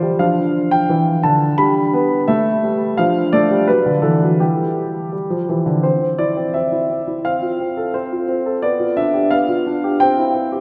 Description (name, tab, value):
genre	classical-period piano sonatina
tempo	86 BPM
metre	2/4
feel	rubato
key	C major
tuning	A4 = 440 Hz
part	warm concert grand piano	solo	0.0-10.6 s	D3 to B5	-17 LUFS	equal	none
room	wet cathedral reverb, RT60 4.1 s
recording	recorded in a church or concert hall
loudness	-17 LUFS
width	mono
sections	0.0-5.8 A section; 5.8-10.6 B section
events	none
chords	0.2 Dm/F; 1.6 G; 2.3 A5; 3.0 Dm/F; 3.7 D; 4.4 Em/G; 5.1 G5; 5.8 C; 7.3 F/C; 8.6 G7/B; 10.0 C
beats	| 0.21 0.90 | 1.59 2.29 | 2.98 3.68 | 4.40 5.13 | 5.85 6.55 | 7.25 7.95 | 8.63 9.32 | 10.01